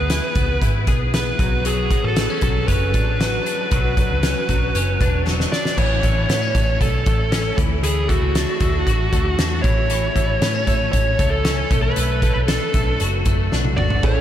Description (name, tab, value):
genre	jangly indie pop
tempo	116 BPM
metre	4/4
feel	straight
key	B dorian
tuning	A4 = 438 Hz
part	fuzz lead guitar	melody	0.0-14.2 s	F#4 to D5	-22 LUFS	right 1 dB	distortion, analog delay
part	twelve-string electric guitar	arpeggios	0.0-14.2 s	E3 to G#4	-26 LUFS	left 4 dB	ensemble chorus, analog delay
part	vintage muted picked electric bass	bass	0.0-14.2 s	E1 to A2	-22 LUFS	equal	none
part	loose indie drum kit	drums	0.1-14.2 s	crash cymbal, hi-hat, kick drum, snare drum, toms	-21 LUFS	equal	none
part	reed electric piano	accompaniment	14.0-14.2 s	C#4 to A4	-23 LUFS	right 6 dB	ensemble chorus
room	moderate huge ambient reverb, RT60 7.7 s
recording	dreamy mix soaked in reverb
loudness	-16 LUFS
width	side -11 dB against mid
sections	0.0-5.8 A section; 5.8-14.2 B section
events	drum fill 5.3-5.8, 13.5-14.0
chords	0.0 C#m7; 1.4 Bmadd9; 5.8 A; 7.6 Dadd9; 9.6 A; 11.7 Bm7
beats	0.11 0.62 1.14 | 1.66 2.17 2.69 3.20 | 3.72 4.23 4.75 5.26 | 5.78 6.29 6.81 7.33 | 7.84 8.36 8.87 9.39 | 9.90 10.42 10.93 11.45 | 11.97 12.48 13.00 13.52 | 14.03